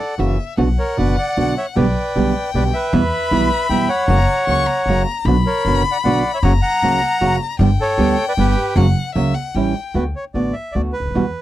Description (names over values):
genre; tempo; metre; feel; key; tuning
tango; 154 BPM; 3/4; rubato; B harmonic minor; A4 = 439 Hz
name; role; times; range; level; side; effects
bandoneon; melody; 0.0-11.4 s; G4 to A#5; -20 LUFS; equal; none
warm violin; second line; 0.0-9.9 s; E5 to C#6; -23 LUFS; left 7 dB; none
nylon-string guitar; accompaniment; 0.2-11.2 s; B2 to G4; -18 LUFS; right 3 dB; none
upright bass; bass; 0.2-11.3 s; F#1 to E2; -19 LUFS; equal; none
room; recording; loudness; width
little or no reverb; dry, close 1970s-style studio recording; -15 LUFS; side -14 dB against mid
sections
0.6-9.9 A section; 9.9-11.4 B section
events
none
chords
0.2 F#7; 0.6 Bm; 1.8 G/B; 2.9 Em; 4.1 F#; 5.3 Bm; 6.4 F#; 7.6 Gadd9; 8.8 F#; 9.5 A7; 9.9 D6